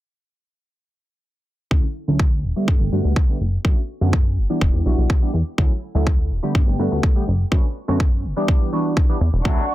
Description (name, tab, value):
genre	filtered disco house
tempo	124 BPM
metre	4/4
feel	straight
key	D major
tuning	A4 = 440 Hz
part	funky polysynth comp	accompaniment	1.7-9.6 s	D3 to G4	-24 LUFS	right 1 dB	chorus, phaser, sidechain pumping, low-pass filter
part	plucky analog bass	bass	1.7-9.5 s	D1 to G2	-20 LUFS	equal	sidechain pumping, low-pass filter
part	electronic kick drum	drums	1.7-9.6 s	none	-17 LUFS	equal	none
part	electric guitar at the edge of break-up	riff	9.4-9.6 s	D4 to C#5	-27 LUFS	left 6 dB	wide subtle chorus, sidechain pumping, low-pass filter
part	dark studio violin section	sustained chords	9.5-9.7 s	D4 to C#6	-24 LUFS	right 2 dB	sidechain pumping, low-pass filter
room	digital ambience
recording	dense, heavily limited modern master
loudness	-17 LUFS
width	side -15 dB against mid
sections	1.7-9.7 A section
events	filter sweep 1.7-9.7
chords	1.7 Dmaj7; 2.7 Gmaj9; 3.4 Bm7/F#; 4.6 Em7; 5.6 Dmaj7; 6.6 Gmaj9; 7.3 Bm7/F#; 8.5 Em7